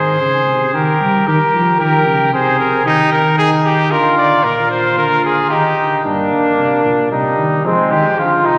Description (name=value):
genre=classical, imitative canzona for brass ensemble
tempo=113 BPM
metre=3/4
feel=straight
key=unclear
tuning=A4 = 440 Hz
part: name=clear trumpet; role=melody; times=0.0-6.0 s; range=Eb4 to D5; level=-18 LUFS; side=equal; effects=none
part: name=clear flugelhorn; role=second line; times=0.0-8.6 s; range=C4 to Bb4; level=-18 LUFS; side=equal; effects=none
part: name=mellow tuba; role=bass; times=0.0-8.6 s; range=G2 to G3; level=-22 LUFS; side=equal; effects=none
part: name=bright trombone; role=accompaniment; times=6.1-8.6 s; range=F3 to Bb3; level=-20 LUFS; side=equal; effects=none
room=wet church reverb, RT60 2.9 s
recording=none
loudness=-14 LUFS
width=mono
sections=0.0-6.0 A section; 6.0-8.6 B section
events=none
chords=0.0 Ab; 0.7 Eb; 2.3 Ab/C; 2.9 Eb; 3.9 Bb/D; 4.4 Bb; 5.5 Eb; 6.0 Gm; 7.1 Cm; 7.7 Fm